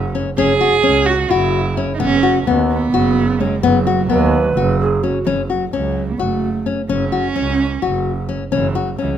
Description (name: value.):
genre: contemporary instrumental, chamber music in an uneven meter.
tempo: 258 BPM (eighths).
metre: 7/8.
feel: straight.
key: F# dorian.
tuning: A4 = 439 Hz.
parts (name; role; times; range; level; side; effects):
dark cello; melody; 0.0-9.2 s; E3 to G#4; -19 LUFS; right 5 dB; none.
clear double bass; bass; 0.0-9.2 s; F#1 to D#2; -20 LUFS; right 3 dB; none.
nylon-string guitar; arpeggios; 0.1-9.2 s; B3 to F#4; -19 LUFS; left 6 dB; none.
mellow hollow alto recorder; second line; 4.1-5.3 s; F#4 to B4; -19 LUFS; right 4 dB; none.
room: light reverb.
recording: close, detailed microphones.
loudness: -14 LUFS.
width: side -9 dB against mid.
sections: 0.0-5.3 A section; 5.3-9.2 B section.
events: none.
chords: 0.0 F#sus2; 2.0 B/F#; 5.3 F#5.